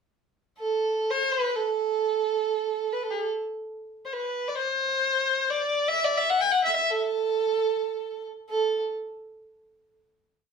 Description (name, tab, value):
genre	Arabic maqam ensemble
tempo	free time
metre	none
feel	none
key	A maqam rast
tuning	A4 = 439 Hz
part	dark fiddle	solo	0.6-8.8 s	G#4-44c to G5+50c	-24 LUFS	right 1 dB	slapback echo
room	moderate studio reverb, RT60 0.5 s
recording	none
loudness	-24 LUFS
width	side -5 dB against mid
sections	0.3-8.5 free-time section; 8.5-10.5 final note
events	none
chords	none